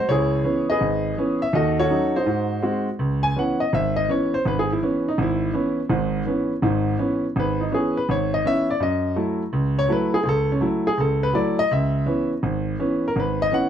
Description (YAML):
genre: solo jazz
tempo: 165 BPM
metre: 4/4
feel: swing 65% on 8ths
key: C# minor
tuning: A4 = 440 Hz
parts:
  - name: clear concert grand piano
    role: solo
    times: 0.0-13.7 s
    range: G#1 to G#5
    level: -20 LUFS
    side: equal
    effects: none
room: little or no reverb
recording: dry, close 1970s-style studio recording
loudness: -20 LUFS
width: side -9 dB against mid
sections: 0.0-3.0 A section; 3.0-13.7 B section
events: grand piano solo 3.0-13.7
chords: 0.1 C#m7; 1.5 D#m7b5; 2.3 G#7; 3.0 C#m7; 8.8 F#m7; 11.7 C#m7